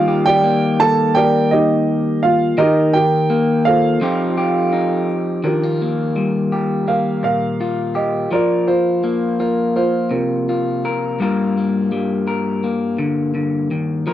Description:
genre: folk.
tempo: 84 BPM.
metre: 4/4.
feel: straight.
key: unclear.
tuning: A4 = 441 Hz.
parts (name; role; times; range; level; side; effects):
dark concert grand piano; melody; 0.0-11.2 s; Eb4 to A5; -17 LUFS; right 2 dB; none.
electric guitar through a small old amp; accompaniment; 0.0-14.1 s; G2 to Bb4; -18 LUFS; left 2 dB; none.
room: light reverb.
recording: dry, close 1970s-style studio recording.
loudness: -15 LUFS.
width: side -12 dB against mid.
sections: 0.0-5.4 A section; 5.4-14.1 B section.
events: none.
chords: 0.0 Ebmaj7; 4.0 F9; 5.4 Ebadd9; 8.3 Fsus4; 11.2 Gm7.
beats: 0.43 1.15 1.86 | 2.58 3.29 4.01 4.72 | 5.44 6.16 6.88 7.59 | 8.31 9.03 9.75 10.47 | 11.19 11.91 12.62 13.34 | 14.06.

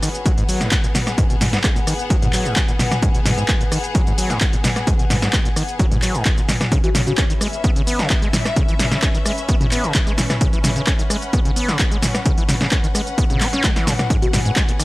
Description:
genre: acid house.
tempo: 130 BPM.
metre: 4/4.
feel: straight.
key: G# minor.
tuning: A4 = 440 Hz.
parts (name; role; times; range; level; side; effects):
buzzing marimba with soft mallets; melody; 0.0-0.1, 6.8-7.7, 14.2-14.8 s; F#4; -28 LUFS; left 4 dB; tape echo.
overdriven acid bass; riff; 0.0-14.8 s; G#2 to C#4; -24 LUFS; equal; distortion, sidechain pumping, tape echo.
punchy analog drum machine; drums; 0.0-14.8 s; cabasa, handclaps, hi-hat, rim click, snare drum, toms; -21 LUFS; equal; none.
clear symphonic string section; texture; 0.0-14.8 s; B3 to F#5; -27 LUFS; left 2 dB; sidechain pumping.
electronic kick drum; drums; 0.3-14.7 s; none; -19 LUFS; equal; overdrive.
room: little or no reverb.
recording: dry, gritty hardware recording, lossy compression artefacts.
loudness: -16 LUFS.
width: side -20 dB against mid.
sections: 0.0-14.8 A section.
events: drum fill 13.6-14.1.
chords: 0.0 G#m7; 6.7 C#m7; 14.1 G#m7.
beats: 0.26 0.72 | 1.18 1.64 2.10 2.56 | 3.02 3.49 3.95 4.41 | 4.87 5.33 5.79 6.26 | 6.72 7.18 7.64 8.10 | 8.56 9.03 9.49 9.95 | 10.41 10.87 11.33 11.79 | 12.26 12.72 13.18 13.64 | 14.10 14.56.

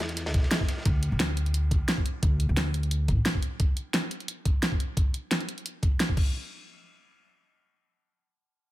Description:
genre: liquid drum and bass.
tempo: 175 BPM.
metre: 4/4.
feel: swing 54% on 16ths.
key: unclear.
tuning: A4 = 439 Hz.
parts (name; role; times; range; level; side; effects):
upright bass; bass; 0.0-3.2 s; A1 to E2; -27 LUFS; equal; none.
crunchy breakbeat drum kit; drums; 0.0-0.8 s; ride cymbal, snare drum; -37 LUFS; equal; high-pass filter on cymbals, high-pass filter on hats, high-pass filter on snare, high-pass filter on room.
pop drum kit; drums; 0.0-6.2 s; crash cymbal, hi-hat, snare drum; -29 LUFS; equal; none.
electronic kick drum; drums; 0.3-6.2 s; none; -25 LUFS; equal; none.
room: little or no reverb.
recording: none.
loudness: -24 LUFS.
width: side -16 dB against mid.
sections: 0.0-6.3 A section; 6.3-8.7 B section.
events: none.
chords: none.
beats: 0.17 0.51 | 0.85 1.20 1.54 1.88 | 2.23 2.57 2.91 3.25 | 3.60 3.94 4.28 4.63 | 4.97 5.31 5.66 6.00.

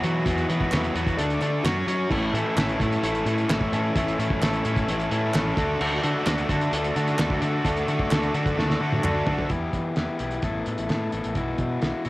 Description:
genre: indie rock.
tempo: 130 BPM.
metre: 4/4.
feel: straight.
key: unclear.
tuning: A4 = 440 Hz.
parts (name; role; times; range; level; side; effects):
mellow tonewheel organ; sustained chords; 0.0-9.5 s; F#4 to D6; -35 LUFS; equal; none.
crunchy overdriven guitar; riff; 0.0-12.1 s; A2 to C#5; -27 LUFS; left 3 dB; cassette tape.
crunchy overdriven guitar; riff; 0.0-9.5 s; A2 to C#5; -28 LUFS; right 2 dB; wide subtle chorus, cassette tape, tape echo.
fuzz fingered electric bass; bass; 0.0-12.1 s; A1 to F#3; -29 LUFS; equal; overdrive.
cloth-damped thuddy drum kit; drums; 0.0-12.1 s; crash cymbal, hi-hat, kick drum, snare drum, toms; -28 LUFS; equal; cassette tape.
group handclap; percussion; 0.7-9.1 s; none; -36 LUFS; right 2 dB; none.
room: studio ambience.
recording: home recording on cassette.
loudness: -22 LUFS.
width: side -19 dB against mid.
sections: 0.0-9.5 A section; 9.5-12.1 B section.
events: drum fill 8.6-9.5.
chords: 0.0 Esus2; 1.2 D5; 1.6 F#5; 2.1 A; 5.6 D; 9.5 Em; 10.4 Asus2; 11.4 Bsus4.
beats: | 0.26 0.72 1.18 1.65 | 2.11 2.57 3.03 3.49 | 3.95 4.41 4.88 5.34 | 5.80 6.26 6.72 7.18 | 7.64 8.11 8.57 9.03 | 9.50 9.96 10.43 10.89 | 11.36 11.82.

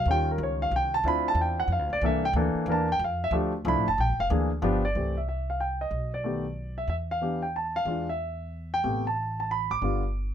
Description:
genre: jazz piano trio.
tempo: 184 BPM.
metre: 3/4.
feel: swing 64% on 8ths.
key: C major from 4.9 s.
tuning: A4 = 440 Hz.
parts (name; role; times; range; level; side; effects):
warm concert grand piano; melody; 0.0-10.3 s; C3 to D6; -26 LUFS; equal; none.
upright bass; bass; 0.0-10.3 s; F1 to F2; -30 LUFS; equal; none.
room: little or no reverb.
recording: close, detailed microphones.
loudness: -25 LUFS.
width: side -9 dB against mid.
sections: 0.0-4.9 A section; 4.9-10.3 B section.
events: grand piano solo 0.0-4.9.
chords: 0.1 D#9; 1.0 Dm9; 2.0 C13; 3.0 F6; 4.0 Bb7#11; 4.6 G7; 4.9 C; 5.9 B(#9); 6.9 Em; 8.9 A7sus2; 9.8 G7.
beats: | 0.07 0.39 0.72 | 1.04 1.37 1.69 | 2.02 2.35 2.67 | 3.00 3.32 3.65 | 3.97 4.29 4.62 | 4.95 5.27 5.60 | 5.92 6.25 6.57 | 6.90 7.22 7.55 | 7.88 8.20 8.53 | 8.85 9.18 9.50 | 9.83 10.15.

